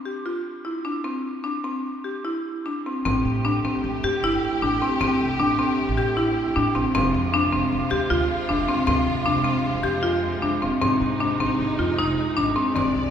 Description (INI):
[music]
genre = contemporary instrumental, chamber music in an uneven meter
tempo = 154 BPM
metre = 5/4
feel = straight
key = unclear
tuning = A4 = 440 Hz
[part]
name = buzzing marimba with hard mallets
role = arpeggios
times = 0.1-13.1 s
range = C4 to G4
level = -22 LUFS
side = left 1 dB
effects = none
[part]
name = dark studio string section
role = sustained chords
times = 3.1-13.1 s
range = C3 to D5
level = -28 LUFS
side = right 1 dB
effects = none
[part]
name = upright bass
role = bass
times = 3.1-13.1 s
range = F1 to A2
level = -29 LUFS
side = right 2 dB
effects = none
[part]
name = frame drum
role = percussion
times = 3.1-12.9 s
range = none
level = -36 LUFS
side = left 2 dB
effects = none
[sound]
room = wet church reverb, RT60 3.6 s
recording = recorded in a church or concert hall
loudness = -21 LUFS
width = side -8 dB against mid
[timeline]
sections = 0.0-3.1 A section; 3.1-13.1 B section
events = none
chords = 0.0 F5; 1.1 C; 3.1 Am7; 6.9 Fm; 10.8 Ab